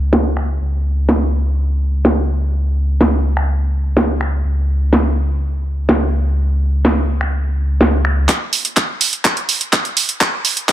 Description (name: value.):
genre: progressive house.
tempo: 125 BPM.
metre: 4/4.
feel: straight.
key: unclear.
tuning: A4 = 441 Hz.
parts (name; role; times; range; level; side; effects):
dark detuned saw bass; bass; 0.0-8.3 s; Db2; -16 LUFS; equal; sidechain pumping.
house drum kit; drums; 0.1-10.7 s; finger snaps, handclaps, hi-hat, snare drum; -16 LUFS; right 1 dB; high-pass filter on snare, low-pass filter on snare, high-pass filter on hats, low-pass filter on hats, high-pass filter on room, low-pass filter on room.
electronic kick drum; drums; 8.3-10.7 s; none; -19 LUFS; equal; high-pass filter on kick, high-pass filter on room.
room: light reverb.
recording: none.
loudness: -14 LUFS.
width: side -12 dB against mid.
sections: 0.0-8.3 A section; 8.3-10.7 B section.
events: build-up 8.3-10.7; drum fill 8.3-10.7.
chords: none.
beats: 0.13 | 0.61 1.09 1.57 2.05 | 2.53 3.01 3.49 3.97 | 4.45 4.93 5.41 5.89 | 6.37 6.85 7.33 7.81 | 8.29 8.77 9.25 9.73 | 10.21 10.69.